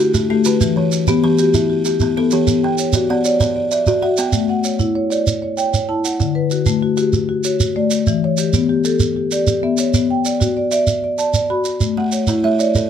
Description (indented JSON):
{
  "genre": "southern african traditional, mbira-style interlocking cycle",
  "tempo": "128 BPM (dotted quarters)",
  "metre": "12/8",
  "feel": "straight",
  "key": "A mixolydian",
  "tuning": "A4 = 440 Hz",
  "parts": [
    { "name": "buzzing kalimba", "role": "arpeggios", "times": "0.0-4.6, 12.0-12.9 s", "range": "D3 to F#5", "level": "-21 LUFS", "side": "right 3 dB", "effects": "none" },
    { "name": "marimba with soft mallets", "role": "arpeggios", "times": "0.0-12.9 s", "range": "D3 to B5", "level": "-16 LUFS", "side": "left 3 dB", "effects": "none" },
    { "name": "shekere", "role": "percussion", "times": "0.1-12.9 s", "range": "none", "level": "-20 LUFS", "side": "right 4 dB", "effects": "none" }
  ],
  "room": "little or no reverb",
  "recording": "close, detailed microphones",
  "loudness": "-15 LUFS",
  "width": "side -8 dB against mid",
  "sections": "0.0-4.3 A section; 4.3-12.9 B section",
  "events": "none",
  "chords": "0.0 D; 2.5 Bm; 4.3 A; 6.2 D; 8.1 Em; 9.9 Bm; 11.8 A",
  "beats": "0.14 | 0.61 1.07 1.54 2.01 | 2.47 2.94 3.40 3.87 | 4.34 4.80 5.27 5.73 | 6.20 6.67 7.13 7.60 | 8.07 8.54 9.01 9.47 | 9.94 10.41 10.88 11.35 | 11.81 12.28 12.75"
}